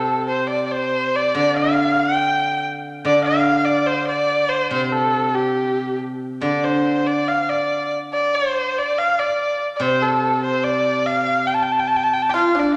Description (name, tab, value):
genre	chinese traditional, Chinese chamber ensemble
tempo	71 BPM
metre	2/4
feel	rubato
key	unclear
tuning	A4 = 435 Hz
part	warm erhu	melody	0.0-12.8 s	G4 to A5	-21 LUFS	equal	none
part	steel-string zither	accompaniment	0.0-12.3 s	C3 to D3	-26 LUFS	equal	none
part	hollow low xiao	second line	12.3-12.8 s	D4 to F4	-20 LUFS	equal	none
part	pipa	second line	12.3-12.8 s	D4 to G4	-24 LUFS	equal	none
room	moderate scoring stage reverb, RT60 2.0 s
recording	none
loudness	-20 LUFS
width	mono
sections	0.0-12.8 A section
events	none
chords	none